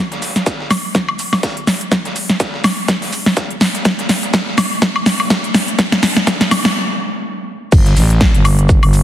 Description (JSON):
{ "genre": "bass house", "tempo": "124 BPM", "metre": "4/4", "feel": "swing 57% on 16ths", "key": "unclear", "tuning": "A4 = 439 Hz", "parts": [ { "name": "big-room dance drum kit", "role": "drums", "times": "0.1-9.0 s", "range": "crash cymbal, hi-hat, snare drum, woodblock", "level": "-15 LUFS", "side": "equal", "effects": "overdrive" }, { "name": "dusty soul sampler-style drum kit", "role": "drums", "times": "0.1-9.0 s", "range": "hi-hat, shaker, snare drum", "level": "-27 LUFS", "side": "right 1 dB", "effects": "overdrive, sidechain pumping on perc, high-pass filter on perc, high-pass filter on snare, sidechain pumping on hats, high-pass filter on hats, high-pass filter on room" }, { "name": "electronic kick drum", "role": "drums", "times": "0.5-8.8 s", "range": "none", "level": "-14 LUFS", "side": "equal", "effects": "overdrive, high-pass filter on kick" }, { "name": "growling FM bass", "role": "bass", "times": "7.7-9.0 s", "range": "G1 to A1", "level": "-12 LUFS", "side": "equal", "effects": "tube saturation, sidechain pumping" } ], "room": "moderate lush hall reverb, RT60 2.4 s", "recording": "heavily compressed radio sound, multiband compression", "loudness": "-12 LUFS", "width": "side -12 dB against mid", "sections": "0.0-7.7 A section; 7.7-9.0 B section", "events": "build-up 0.0-7.7; drum fill 0.0-6.8; stop 6.8-7.7; drop 7.7-9.0", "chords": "none" }